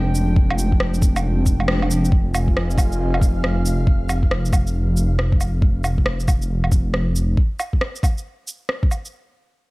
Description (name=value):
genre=future garage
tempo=137 BPM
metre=4/4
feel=swing 64% on 16ths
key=F dorian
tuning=A4 = 438 Hz
part: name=dark analog pad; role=sustained chords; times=0.0-3.9 s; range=Ab3 to Ab5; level=-27 LUFS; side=right 1 dB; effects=chorus, sidechain pumping
part: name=swelling detuned saw bass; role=bass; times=0.0-7.4 s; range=F1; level=-20 LUFS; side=equal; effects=sidechain pumping
part: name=electronic shaker, woodblock and rim click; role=drums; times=0.1-9.1 s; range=none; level=-25 LUFS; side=right 1 dB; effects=studio reverb
part: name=electronic kick drum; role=drums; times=0.4-8.9 s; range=none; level=-17 LUFS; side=equal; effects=studio reverb
part: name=flickering grainy texture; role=texture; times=2.5-5.6 s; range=F5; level=-37 LUFS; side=left 1 dB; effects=built-in reverb
room=little or no reverb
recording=none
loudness=-17 LUFS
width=side -22 dB against mid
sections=0.0-2.1 A section; 2.1-9.1 B section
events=kick drops out 1.7-2.1; band accent 1.7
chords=0.0 Fm; 2.1 Fm7